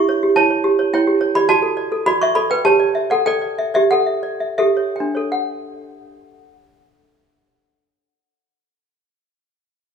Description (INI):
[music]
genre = classical, lullaby for toy piano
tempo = 80-108 BPM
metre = 3/4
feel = rubato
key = D major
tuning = A4 = 440 Hz
[part]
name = toy piano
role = solo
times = 0.0-8.9 s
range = D4 to C#6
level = -15 LUFS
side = right 2 dB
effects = none
[sound]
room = light reverb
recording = studio ambience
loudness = -15 LUFS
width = side -6 dB against mid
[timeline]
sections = 0.0-5.3 A section; 5.3-9.7 B section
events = slowing down 0.6-5.3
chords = 0.0 C#dim/E; 1.5 D/F#; 2.6 Em7/G; 3.3 A7sus4; 4.6 A7; 5.3 D